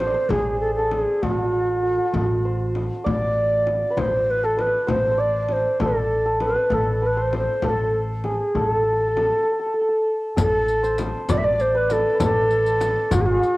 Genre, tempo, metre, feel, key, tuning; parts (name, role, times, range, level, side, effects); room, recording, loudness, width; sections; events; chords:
Persian modal ensemble; 66 BPM (dotted quarters); 6/8; straight; A avaz esfahan; A4 = 440 Hz
reedy ney; melody; 0.0-13.6 s; F4+49c to E5; -21 LUFS; equal
santur; second line; 0.0-13.6 s; F#4-50c to D5; -26 LUFS; right 1 dB; cassette tape
upright bass; bass; 0.0-13.4 s; G#1 to A1; -27 LUFS; equal
frame drum; percussion; 0.0-13.3 s; -29 LUFS; left 3 dB
riq; percussion; 10.4-13.5 s; -31 LUFS; left 3 dB
tombak; percussion; 10.4-13.3 s; -26 LUFS; left 1 dB
light reverb, studio reverb; home recording on cassette; -19 LUFS; side -19 dB against mid
0.0-10.4 A section; 10.4-13.6 B section
break 9.5-10.4